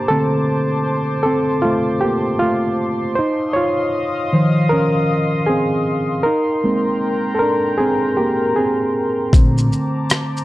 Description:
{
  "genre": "lo-fi hip hop",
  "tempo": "78 BPM",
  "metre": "4/4",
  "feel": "swing 65% on 16ths",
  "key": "Bb major",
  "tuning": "A4 = 440 Hz",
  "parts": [
    { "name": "barky reed electric piano", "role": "accompaniment", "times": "0.0-10.4 s", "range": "D3 to Db5", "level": "-16 LUFS", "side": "equal", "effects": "overdrive, cassette tape, plate reverb" },
    { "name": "warbly tape-like pad", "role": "sustained chords", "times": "0.0-10.4 s", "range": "Bb4 to Eb6", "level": "-24 LUFS", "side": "left 2 dB", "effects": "chorus, built-in reverb, plate reverb" },
    { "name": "upright bass", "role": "bass", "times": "9.3-9.7 s", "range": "Bb1", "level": "-18 LUFS", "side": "left 1 dB", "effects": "none" },
    { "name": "dusty soul sampler-style drum kit", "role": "drums", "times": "9.3-10.4 s", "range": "hi-hat, kick drum, rim click, shaker", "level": "-13 LUFS", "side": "left 1 dB", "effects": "none" }
  ],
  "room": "moderate studio reverb, RT60 0.7 s",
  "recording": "cassette tape",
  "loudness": "-15 LUFS",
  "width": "side -16 dB against mid",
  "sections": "0.0-10.4 A section",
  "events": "reed electric piano solo 0.0-10.4",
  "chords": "0.0 Bbmaj9; 3.2 Dbmaj9; 6.3 Abmaj9; 9.3 Bbmaj9",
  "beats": "| 0.10 0.87 1.64 2.41 | 3.18 3.95 4.71 5.48 | 6.25 7.02 7.79 8.56 | 9.33 10.10"
}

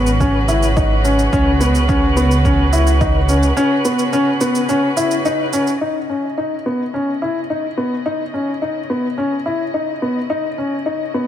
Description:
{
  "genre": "piano and strings electronica",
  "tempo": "107 BPM",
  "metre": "4/4",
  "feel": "straight",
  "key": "C# minor",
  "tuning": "A4 = 442 Hz",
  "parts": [
    { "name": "muted string quartet", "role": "sustained chords", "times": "0.0-11.3 s", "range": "C#3 to D#5", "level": "-24 LUFS", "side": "right 1 dB", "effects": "sidechain pumping" },
    { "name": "warm upright piano", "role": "riff", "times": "0.0-11.3 s", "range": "B3 to E4", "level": "-17 LUFS", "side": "left 1 dB", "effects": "ping-pong delay" },
    { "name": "dark detuned saw bass", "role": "bass", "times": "0.0-3.5 s", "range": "G#1 to C#2", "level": "-16 LUFS", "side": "right 1 dB", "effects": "tube saturation, sidechain pumping" },
    { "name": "shaker", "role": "drums", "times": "0.1-5.8 s", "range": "none", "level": "-29 LUFS", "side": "right 6 dB", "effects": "low-pass filter on perc, studio reverb" },
    { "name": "electronic kick drum", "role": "drums", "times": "0.2-3.1 s", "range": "none", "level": "-19 LUFS", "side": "right 1 dB", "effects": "studio reverb" }
  ],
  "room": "light reverb, small room ambience",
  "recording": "none",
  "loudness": "-15 LUFS",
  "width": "side -10 dB against mid",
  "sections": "0.0-5.8 A section; 5.8-11.3 B section",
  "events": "break 3.6-5.8",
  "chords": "0.0 F#sus4; 5.8 C#madd9",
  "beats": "0.21 0.77 | 1.33 1.89 2.45 3.01 | 3.57 4.13 4.69 5.25 | 5.81 6.38 6.94 7.50 | 8.06 8.62 9.18 9.74 | 10.30 10.86"
}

